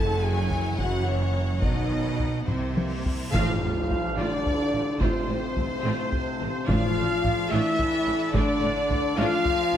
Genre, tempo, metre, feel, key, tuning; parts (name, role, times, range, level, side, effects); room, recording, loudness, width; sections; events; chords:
cinematic, epic orchestral film score; 72 BPM (dotted quarters); 6/8; straight; A4 = 435 Hz
bright symphonic violin section; melody; 0.0-9.8 s; C5 to A5; -34 LUFS; left 2 dB
rich symphonic violin section; second line; 0.0-9.8 s; C5 to A5; -37 LUFS; left 2 dB
rich symphonic viola section; accompaniment; 0.0-9.8 s; D#3 to G4; -34 LUFS; right 1 dB
mellow French horn section; sustained chords; 0.0-9.8 s; C4 to A4; -29 LUFS; left 3 dB
rich symphonic string section; sustained chords; 0.0-9.8 s; A3 to F#5; -38 LUFS; left 1 dB
warm trombone section; sustained chords; 0.0-9.8 s; C3 to Bb3; -35 LUFS; right 3 dB
rich studio double bass section; bass; 0.0-9.8 s; F#1 to C2; -31 LUFS; right 2 dB
rich symphonic cello section; bass; 0.0-9.8 s; F#2 to C3; -33 LUFS; right 3 dB
solo taiko drums; drums; 0.5-9.7 s; -30 LUFS; equal
cymbal swell and sub drop; sound effects; 2.9-5.0 s; -36 LUFS; equal
concert flute; second line; 3.3-9.7 s; C5 to F5; -36 LUFS; left 2 dB
warm trumpet section; stabs; 3.3-9.8 s; C5 to F5; -32 LUFS; right 2 dB
tam-tam; percussion; 3.3-5.5 s; -38 LUFS; left 2 dB
timpani; percussion; 3.3-4.1, 6.7-7.5 s; A2; -33 LUFS; equal
moderate scoring stage reverb, RT60 1.8 s; -23 LUFS; side -10 dB against mid
0.0-3.3 A section; 3.3-9.8 B section
drum fill 2.5-3.3; cymbal swell 2.9-3.3; band accent 3.3-3.9; impact 3.3-5.0
0.0 F#5; 1.6 B; 2.5 C7; 3.3 F/A; 6.7 Dm/A